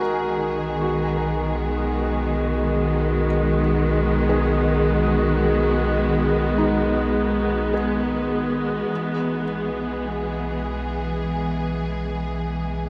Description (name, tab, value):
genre	ambient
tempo	52 BPM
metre	4/4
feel	straight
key	B major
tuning	A4 = 440 Hz
part	muted studio string section	sustained chords	0.0-12.9 s	D#3 to G#4	-24 LUFS	equal	shimmer reverb
part	felt-muted upright piano	arpeggios	0.0-12.9 s	D#4 to A#4	-32 LUFS	equal	diffuse ambient delay, shimmer reverb
part	warm sub bass	bass	0.0-12.9 s	B1	-29 LUFS	equal	none
room	wet cathedral reverb, RT60 5.9 s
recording	in a vast, echoing space, cassette tape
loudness	-22 LUFS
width	mono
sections	0.0-12.9 A section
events	fade-out 5.8-12.9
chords	0.0 B6; 8.9 E/B